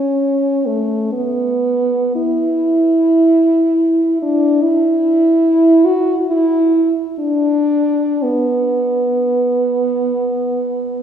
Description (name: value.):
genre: classical, free, expressive piece for unaccompanied French horn.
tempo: 54-75 BPM.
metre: 4/4.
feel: rubato.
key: unclear.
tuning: A4 = 440 Hz.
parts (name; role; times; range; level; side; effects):
warm French horn; solo; 0.0-11.0 s; A3 to F#4; -13 LUFS; right 1 dB; none.
room: wet concert hall reverb, RT60 2.5 s.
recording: heard from further back in the room, studio reverb.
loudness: -13 LUFS.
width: side -8 dB against mid.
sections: 0.0-11.0 A section.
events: none.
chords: none.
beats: 0.22 | 1.14 2.16 3.02 3.83 | 4.64 5.45 6.30 7.22 | 8.25 9.36 10.40.